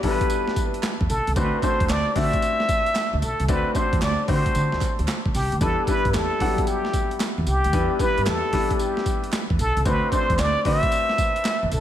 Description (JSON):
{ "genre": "R&B, new jack swing", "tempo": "113 BPM", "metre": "4/4", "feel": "swing 67% on 16ths", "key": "E minor", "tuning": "A4 = 440 Hz", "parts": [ { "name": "trumpet with plunger mute", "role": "melody", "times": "0.0-11.8 s", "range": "G4 to E5", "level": "-24 LUFS", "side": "equal", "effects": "none" }, { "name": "clear baby grand piano", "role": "accompaniment", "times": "0.0-11.8 s", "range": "F#3 to F#5", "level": "-27 LUFS", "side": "left 4 dB", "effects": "none" }, { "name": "upright bass", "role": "bass", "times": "0.0-11.8 s", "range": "B1 to E3", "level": "-25 LUFS", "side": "right 1 dB", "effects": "none" }, { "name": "boom bap sampler-style drum kit", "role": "drums", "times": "0.0-11.8 s", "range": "handclaps, hi-hat, kick drum, snare drum, tambourine", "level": "-26 LUFS", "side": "right 1 dB", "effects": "overdrive, gated reverb" }, { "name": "group handclap", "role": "percussion", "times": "0.8-11.6 s", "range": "none", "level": "-38 LUFS", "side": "right 9 dB", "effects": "none" } ], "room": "light reverb, studio reverb", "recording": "none", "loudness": "-20 LUFS", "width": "side -11 dB against mid", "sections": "0.0-11.8 A section", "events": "none", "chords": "0.0 Em7; 1.4 D7; 5.6 Em7; 9.9 D7" }